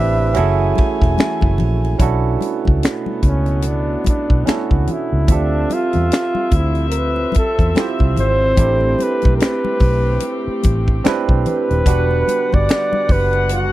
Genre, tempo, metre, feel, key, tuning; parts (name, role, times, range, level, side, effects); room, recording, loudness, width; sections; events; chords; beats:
R&B, neo-soul; 73 BPM; 4/4; swing 59% on 16ths; B phrygian; A4 = 441 Hz
breathy flugelhorn; melody; 0.0-13.7 s; C#4 to E5; -21 LUFS; equal; tape echo
barky tine electric piano; accompaniment; 0.0-13.7 s; B3 to E5; -22 LUFS; right 8 dB
dark studio string section; sustained chords; 0.0-13.7 s; B2 to G#5; -25 LUFS; left 2 dB
vintage muted fingered electric bass; bass; 0.0-13.7 s; D#1 to E2; -18 LUFS; equal
tight funk drum kit; drums; 0.3-13.7 s; finger snaps, hi-hat, kick drum, ride cymbal, snare drum; -16 LUFS; equal
congas; percussion; 0.3-13.3 s; -28 LUFS; left 5 dB
little or no reverb; dry, close 1970s-style studio recording; -14 LUFS; side -15 dB against mid
0.0-2.0 A section; 2.0-13.7 B section
flugelhorn solo 2.0-13.7
0.4 F#m9; 2.0 Bm9; 5.3 Dm9; 8.6 Am9; 11.9 Em9
0.36 1.18 | 2.00 2.82 3.64 4.47 | 5.29 6.11 6.93 7.75 | 8.58 9.40 10.22 11.04 | 11.86 12.69 13.51